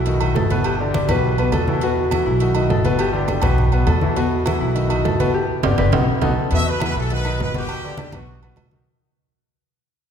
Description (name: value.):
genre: latin, salsa.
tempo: 204 BPM.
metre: 4/4.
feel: straight.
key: E harmonic minor from 6.5 s.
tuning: A4 = 440 Hz.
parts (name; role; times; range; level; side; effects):
Celtic harp; second line; 0.0-8.4 s; E4 to B4; -24 LUFS; left 1 dB; none.
upright bass; bass; 0.0-8.8 s; G1 to E2; -21 LUFS; equal; none.
clear baby grand piano; accompaniment; 0.1-8.8 s; B2 to B4; -23 LUFS; left 2 dB; none.
agogo bells and timbales; percussion; 0.1-8.7 s; none; -27 LUFS; right 5 dB; none.
congas; percussion; 0.1-8.9 s; none; -25 LUFS; right 1 dB; none.
brilliant horn section; melody; 6.5-8.4 s; F#4 to E5; -26 LUFS; equal; none.
room: wet scoring stage reverb, RT60 2.1 s.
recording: recorded in a church or concert hall.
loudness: -16 LUFS.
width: side -8 dB against mid.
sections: 0.0-6.5 A section; 6.5-8.9 B section.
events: band accent 5.3-6.5; drum fill 5.8-6.5; fade-out 6.5-8.9.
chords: 0.1 B7; 0.6 G; 1.2 B5; 2.4 B7; 3.0 G; 3.6 B5; 4.8 B7; 5.3 G; 5.9 B7; 6.5 Esus2; 7.1 B; 7.7 G; 8.3 B.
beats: 0.06 0.36 | 0.65 0.94 1.24 1.53 | 1.82 2.12 2.41 2.70 | 3.00 3.29 3.58 3.88 | 4.17 4.46 4.76 5.05 | 5.34 5.64 5.93 6.22 | 6.52 6.81 7.11 7.40 | 7.69 7.99 8.28 8.57.